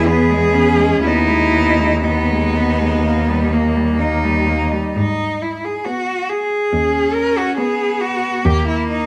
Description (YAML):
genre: classical, lyrical piece for cello ensemble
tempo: 59-70 BPM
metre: 4/4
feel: rubato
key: G# minor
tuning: A4 = 440 Hz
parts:
  - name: clear cello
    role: melody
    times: 0.0-9.1 s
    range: D#4 to A#4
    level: -21 LUFS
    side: equal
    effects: none
  - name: clear cello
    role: second line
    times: 0.0-9.1 s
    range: A#3 to D#4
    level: -22 LUFS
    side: equal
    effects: none
  - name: rich cello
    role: accompaniment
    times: 0.0-8.2 s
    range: G3 to B3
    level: -25 LUFS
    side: equal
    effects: none
  - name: rich cello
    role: bass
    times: 0.0-9.1 s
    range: D#2 to G#2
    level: -20 LUFS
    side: equal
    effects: none
room: moderate recital hall reverb, RT60 1.6 s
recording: close, detailed microphones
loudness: -17 LUFS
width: mono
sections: 0.0-5.0 A section; 5.0-9.1 B section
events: none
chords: 0.0 E; 1.0 G#m/D#; 3.0 D#; 5.0 G#m; 8.4 D#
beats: 0.06 | 1.04 2.04 3.03 3.99 | 4.95 5.85 6.71 7.57 | 8.44